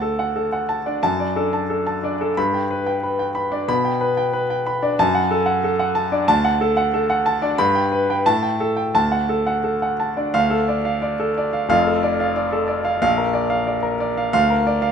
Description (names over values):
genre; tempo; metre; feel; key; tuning
classical, virtuoso piano study; 91 BPM; 2/4; rubato; D major, D minor from 10.3 s; A4 = 440 Hz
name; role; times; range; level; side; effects
clear grand piano; solo; 0.0-14.9 s; F1 to B5; -18 LUFS; equal; none
room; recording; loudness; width
moderate large studio reverb, RT60 1.2 s; minimal, uncompressed stereo recording; -18 LUFS; side -7 dB against mid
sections
0.0-10.3 A section; 10.3-14.9 B section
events
none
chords
0.0 D; 1.0 D/F#; 2.4 G; 3.7 G/B; 5.0 D/F#; 6.3 D; 7.6 G; 8.3 Gsus2/A; 8.9 D; 10.3 Dm; 11.7 Dm/F; 13.0 Bb; 14.3 Bb/D